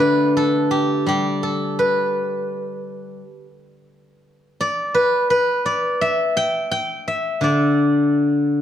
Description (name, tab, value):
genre	chinese traditional, Chinese solo plucked strings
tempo	84 BPM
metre	4/4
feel	rubato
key	G gong mode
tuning	A4 = 436 Hz
part	steel-string zither	solo	0.0-8.6 s	D3 to G5	-17 LUFS	equal	none
room	moderate scoring stage reverb, RT60 1.5 s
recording	dark, warm production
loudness	-17 LUFS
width	side -10 dB against mid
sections	0.0-8.6 A section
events	none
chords	none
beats	0.35 | 1.08 1.79 2.50 3.21 | 3.90 4.59 5.30 6.00 | 6.71 7.43 8.14